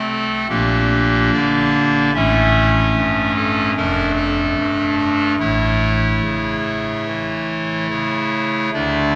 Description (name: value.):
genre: classical, chorale-style piece for pipe organ.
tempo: 73 BPM.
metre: 4/4.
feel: rubato.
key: unclear.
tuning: A4 = 436 Hz.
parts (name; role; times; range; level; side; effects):
pipe organ, clarinet reed; solo; 0.0-9.2 s; F1 to E5; -18 LUFS; equal; none.
room: wet cathedral reverb, RT60 4.2 s.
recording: none.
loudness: -18 LUFS.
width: mono.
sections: 0.0-9.2 A section.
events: none.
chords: 0.5 Gm/Bb; 2.1 A; 3.8 Dm/F; 5.4 A.